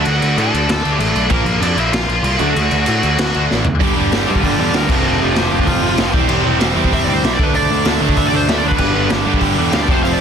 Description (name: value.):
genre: punk rock.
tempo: 192 BPM.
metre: 4/4.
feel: straight.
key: unclear.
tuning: A4 = 437 Hz.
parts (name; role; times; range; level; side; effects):
smooth overdriven lead guitar; melody; 0.0-10.2 s; A3 to A5; -21 LUFS; left 2 dB; tape echo.
distorted electric guitar; riff; 0.0-10.2 s; G2 to G4; -22 LUFS; left 15 dB; distortion.
high-gain distorted guitar; riff; 0.0-10.2 s; F2 to D4; -22 LUFS; equal; distortion.
overdriven electric guitar; riff; 0.0-10.2 s; F2 to D4; -19 LUFS; right 15 dB; none.
growling picked electric bass; bass; 0.0-10.2 s; E1 to A2; -20 LUFS; equal; overdrive.
raw garage drum kit; drums; 0.1-10.1 s; crash cymbal, hi-hat, kick drum, snare drum, toms; -18 LUFS; equal; none.
room: little or no reverb.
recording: dense, heavily limited modern master.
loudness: -13 LUFS.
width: side -7 dB against mid.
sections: 0.0-3.8 A section; 3.8-10.2 B section.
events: half time 0.0-3.8; drum fill 3.5-3.8; lead electric guitar solo 3.8-10.2.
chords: 0.0 D; 1.3 Bb; 2.4 D; 3.8 G; 4.9 F; 6.1 C/E; 7.4 D; 8.8 G.